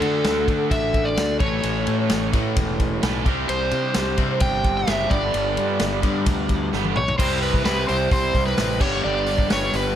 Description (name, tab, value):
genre	classic rock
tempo	130 BPM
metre	4/4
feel	straight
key	unclear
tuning	A4 = 440 Hz
part	overdriven slide guitar	melody	0.0-10.0 s	A4 to G5	-24 LUFS	equal	slapback echo
part	overdriven electric guitar	riff	0.0-10.0 s	G2 to G4	-27 LUFS	left 8 dB	none
part	raw garage guitar	riff	0.0-10.0 s	G2 to A4	-26 LUFS	right 4 dB	overdrive
part	fuzz fingered electric bass	bass	0.0-9.9 s	E1 to D3	-27 LUFS	equal	overdrive
part	vintage drum kit	drums	0.0-9.8 s	crash cymbal, hi-hat, kick drum, ride cymbal, snare drum, toms	-24 LUFS	equal	none
room	little or no reverb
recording	none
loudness	-19 LUFS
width	side -10 dB against mid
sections	0.0-7.2 A section; 7.2-10.0 B section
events	drum fill 6.7-7.2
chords	0.0 D; 1.4 A; 3.3 Csus2; 5.1 G; 7.2 C; 8.8 G